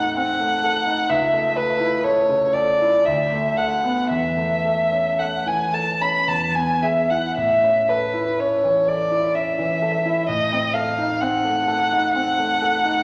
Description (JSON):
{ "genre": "classical, romantic duo for violin and grand piano", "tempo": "54-67 BPM", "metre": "3/4", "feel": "rubato", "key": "A major", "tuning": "A4 = 441 Hz", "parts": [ { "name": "dark violin", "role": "melody", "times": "0.0-13.0 s", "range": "B4 to B5", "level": "-21 LUFS", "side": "equal", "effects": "none" }, { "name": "clear concert grand piano", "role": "accompaniment", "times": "0.0-13.0 s", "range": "C#2 to A4", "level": "-27 LUFS", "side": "equal", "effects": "none" } ], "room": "wet recital hall reverb, RT60 1.6 s", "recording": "lossy compression artefacts", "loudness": "-20 LUFS", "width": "mono", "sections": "0.0-13.0 A section", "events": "none", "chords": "0.0 Adim7; 1.1 A/C#; 3.1 Bm7/D; 4.1 A/E; 6.3 E; 7.4 A; 10.3 Adim7" }